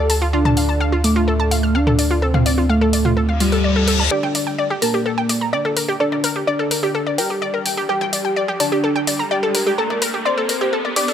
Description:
melodic techno; 127 BPM; 4/4; straight; G minor; A4 = 438 Hz
wide unison lead; melody; 0.0-11.1 s; G3 to D5; -21 LUFS; equal; digital delay
analog pluck; arpeggios; 0.0-11.1 s; F4 to F6; -21 LUFS; left 1 dB; chorus, digital delay
round analog bass; bass; 0.0-4.1 s; D2; -19 LUFS; equal
punchy analog drum machine; drums; 0.1-11.1 s; hi-hat, toms; -22 LUFS; equal; high-pass filter on hats, high-pass filter on toms, high-pass filter on room
reverse cymbal and riser; sound effects; 3.4-11.1 s; -27 LUFS; left 2 dB
glassy wavetable pluck; second line; 4.1-11.1 s; Bb4 to D6; -26 LUFS; right 1 dB; chorus, digital delay
light reverb, digital ambience; high-pass filter; -16 LUFS; side -9 dB against mid
0.0-4.1 A section; 4.1-11.1 B section
reverse cymbal 3.4-4.1; build-up 4.1-11.1; riser 4.1-11.1; filter sweep on analog synth lead 4.1-11.1
0.0 Dm; 4.1 Gmadd9
| 0.33 0.81 1.28 1.75 | 2.22 2.69 3.17 3.64 | 4.11 4.58 5.06 5.53 | 6.00 6.47 6.95 7.42 | 7.89 8.37 8.84 9.31 | 9.78 10.25 10.73

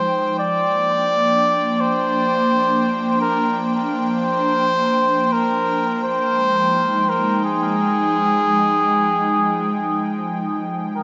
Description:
ambient; 85 BPM; 4/4; swing 56% on 16ths; F dorian; A4 = 439 Hz
trumpet with cup mute; melody; 0.0-11.0 s; Ab4 to D5; -20 LUFS; equal; dub echo
airy breathy pad; sustained chords; 0.0-11.0 s; F3 to G5; -24 LUFS; equal; chorus
wet echo chamber reverb, RT60 1.7 s, studio reverb; nothing above 7.6 kHz; -19 LUFS; mono
0.0-11.0 A section
0.4 Gm7; 6.0 Fm9
| 0.38 1.09 1.79 2.50 | 3.21 3.91 4.62 5.32 | 6.03 6.74 7.44 8.15 | 8.85 9.56 10.26 10.97

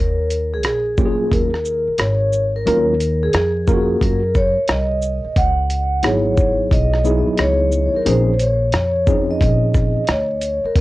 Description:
hip hop, jazz-hop; 89 BPM; 4/4; swing 65% on 16ths; Eb minor; A4 = 439 Hz
vibraphone with soft mallets; melody; 0.0-10.8 s; Ab4 to Gb5; -19 LUFS; equal; cassette tape, tape echo, plate reverb
upright bass; bass; 0.0-10.8 s; Ab1 to Gb2; -20 LUFS; equal
dusty soul sampler-style drum kit; drums; 0.3-10.8 s; hi-hat, kick drum, rim click, shaker; -19 LUFS; equal
tine electric piano; accompaniment; 1.0-10.0 s; F3 to Bb4; -20 LUFS; equal; overdrive, fast stereo tremolo, cassette tape
light reverb; home recording on cassette; -15 LUFS; side -18 dB against mid
0.0-10.8 A section
0.0 Ebm11; 5.4 Dbm11; 8.1 Bbm11
0.64 1.32 1.99 | 2.66 3.34 4.01 4.69 | 5.36 6.04 6.71 7.38 | 8.06 8.73 9.40 10.08 | 10.75

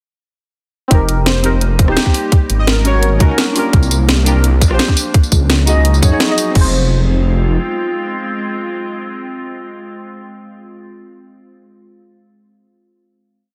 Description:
liquid drum and bass; 170 BPM; 4/4; straight; F minor; A4 = 441 Hz
deep mellow chord stab; accompaniment; 0.9-9.9 s; C4 to Eb5; -21 LUFS; equal; chorus, tape echo
glassy FM pad; sustained chords; 1.6-9.9 s; F3 to F4; -26 LUFS; equal; ensemble chorus, built-in reverb, sidechain pumping
swelling detuned saw bass; bass; 0.9-7.6 s; Eb1 to Gb2; -16 LUFS; equal
drum and bass drum kit; drums; 0.9-6.6 s; crash cymbal, hi-hat, rim click, snare drum, tambourine; -20 LUFS; equal; overdrive
electronic kick drum; drums; 0.9-6.6 s; -13 LUFS; equal; overdrive
airy dreamy lead; melody; 1.3-3.0 s; G4 to Eb5; -27 LUFS; equal; chorus, vintage 12-bit sampler grit, dub echo
light reverb, digital ambience; dense, heavily limited modern master; -14 LUFS; mono
0.9-6.6 drop; 6.6-9.4 final chord
drop 0.9-6.6
0.9 F9sus4; 2.3 Ab9sus4; 3.7 C9sus4; 5.1 Db9sus4; 6.6 Fm
| 0.91 1.26 1.61 1.97 | 2.32 2.67 3.03 3.38 | 3.73 4.09 4.44 4.79 | 5.14 5.50 5.85 6.20 | 6.56 6.91 7.26 7.62 | 7.97 8.32 8.67 9.03

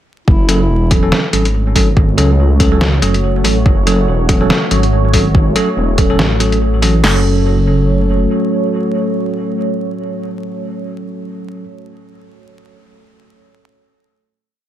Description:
deep dubstep; 142 BPM; 4/4; swing 57% on 16ths, half-time; F# minor; A4 = 440 Hz
mellow duduk; melody; 0.3-0.9 s; E4; -23 LUFS; left 1 dB; dub echo
deep dark ambient pad; sustained chords; 1.4-11.2 s; A3 to C#5; -20 LUFS; equal; chorus, built-in reverb
dark detuned saw bass; bass; 0.3-8.3 s; E1 to C#2; -13 LUFS; equal
deep house drum kit; drums; 0.3-7.1 s; crash cymbal, kick drum, snare drum; -13 LUFS; equal
bell-like tine electric piano; stabs; 0.5-11.6 s; F#3 to A4; -18 LUFS; right 1 dB; fast stereo tremolo, dub echo
trip hop sampler-style drum kit; drums; 0.5-6.9 s; hi-hat, snare drum; -17 LUFS; left 1 dB
digital ambience; vinyl crackle; -11 LUFS; side -12 dB against mid
0.3-7.0 drop; 7.0-10.4 final chord
drop 0.3-7.0
0.3 F#m
| 0.28 0.70 1.12 1.54 | 1.97 2.39 2.81 3.23 | 3.66 4.08 4.50 4.92 | 5.35 5.77 6.19 6.61 | 7.04 7.46 7.88 8.30 | 8.73 9.15 9.57 9.99

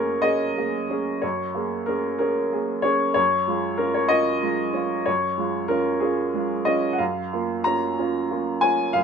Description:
neoclassical minimalist piano; 62 BPM (dotted quarters); 6/8; rubato; F# major; A4 = 441 Hz
warm baby grand piano; solo; 0.0-9.0 s; F#2 to A#5; -21 LUFS; equal
light reverb; minimal, uncompressed stereo recording; -21 LUFS; side -6 dB against mid
0.0-9.0 A section
0.0 F#add9; 3.2 C#/F#; 7.0 A#m/F#
0.24 | 1.23 2.20 | 3.16 4.11 | 5.06 6.02 | 7.00 7.99 | 8.95

